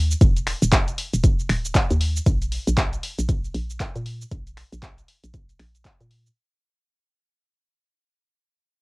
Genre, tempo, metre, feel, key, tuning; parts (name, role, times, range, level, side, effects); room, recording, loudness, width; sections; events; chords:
deep house; 117 BPM; 4/4; swing 60% on 16ths; A4 = 440 Hz
hollow knocking FM bass; bass; 0.0-6.3 s; Eb1 to Bb2; -24 LUFS; equal; sidechain pumping
punchy analog drum machine; drums; 0.1-6.3 s; finger snaps, handclaps, hi-hat, shaker; -26 LUFS; equal; cassette tape
electronic kick drum; drums; 0.2-6.0 s; -19 LUFS; equal; cassette tape
little or no reverb; home recording on cassette; -20 LUFS; side -27 dB against mid
0.0-6.4 A section
drop 0.0-6.4; fade-out 0.0-6.4